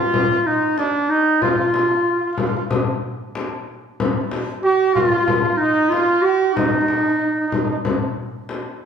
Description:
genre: Turkish makam ensemble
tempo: 93 BPM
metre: 4/4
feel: straight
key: unclear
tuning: A4 = 437 Hz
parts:
  - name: warm clarinet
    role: melody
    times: 0.0-7.8 s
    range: D4 to G4-36c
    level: -18 LUFS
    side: equal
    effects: none
  - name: warm trumpet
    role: second line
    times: 0.0-7.8 s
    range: D4 to G4-37c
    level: -22 LUFS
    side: right 4 dB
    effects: none
  - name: frame drum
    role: percussion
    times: 0.1-8.6 s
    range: none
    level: -23 LUFS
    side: left 3 dB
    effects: none
room: wet large studio reverb, RT60 1.3 s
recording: band playing live in one room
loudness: -16 LUFS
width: side -7 dB against mid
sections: 0.0-8.9 A section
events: none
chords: none

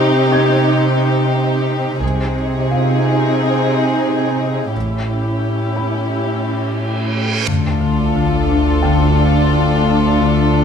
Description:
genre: cinematic, suspense film score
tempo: 88 BPM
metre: 4/4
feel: straight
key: D minor from 7.5 s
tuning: A4 = 440 Hz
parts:
  - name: warm symphonic violin section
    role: melody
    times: 0.0-10.6 s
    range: G4 to A4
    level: -22 LUFS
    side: left 3 dB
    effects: none
  - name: dark symphonic viola section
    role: accompaniment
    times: 0.0-10.6 s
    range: C4 to E4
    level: -19 LUFS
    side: right 1 dB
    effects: none
  - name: warm symphonic cello section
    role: bass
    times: 0.0-10.6 s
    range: D2 to C3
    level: -19 LUFS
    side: right 2 dB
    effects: none
  - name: felt-muted upright piano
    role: texture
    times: 0.0-10.6 s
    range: F4 to Ab6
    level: -30 LUFS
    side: equal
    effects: none
  - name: warm studio double bass section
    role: bass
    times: 2.0-10.6 s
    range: A1 to D2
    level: -20 LUFS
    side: right 2 dB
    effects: none
  - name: reverse cymbal and sub drop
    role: sound effects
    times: 6.7-10.2 s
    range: none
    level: -24 LUFS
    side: right 1 dB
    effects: none
  - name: warm symphonic violin section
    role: second line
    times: 7.5-10.6 s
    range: F4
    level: -22 LUFS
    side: left 1 dB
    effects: none
  - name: marimba with hard mallets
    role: riff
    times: 7.5-10.6 s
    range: D3 to D4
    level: -18 LUFS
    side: left 9 dB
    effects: none
room: moderate scoring stage reverb, RT60 1.8 s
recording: close, detailed microphones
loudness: -14 LUFS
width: side -7 dB against mid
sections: 0.0-7.5 A section; 7.5-10.6 B section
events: reverse cymbal 6.7-7.5; impact 7.5-10.2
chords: 0.0 Cm; 4.8 A7; 7.5 Dm

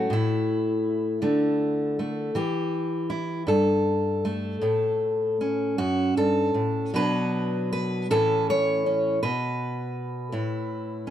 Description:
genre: folk, solo fingerstyle acoustic guitar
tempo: 53 BPM (dotted quarters)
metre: 6/8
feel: uneven beats, rubato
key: unclear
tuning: A4 = 441 Hz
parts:
  - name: fingerpicked steel-string acoustic guitar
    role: solo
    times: 0.0-11.1 s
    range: F#2 to C#5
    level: -23 LUFS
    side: equal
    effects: none
room: light reverb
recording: dark, warm production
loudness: -23 LUFS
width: side -10 dB against mid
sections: 0.0-11.1 A section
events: none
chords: 0.1 N.C.; 1.2 D5; 2.3 Em; 3.5 Gsus2; 4.6 A; 6.9 Bm; 8.1 A; 9.2 N.C.; 10.3 A5

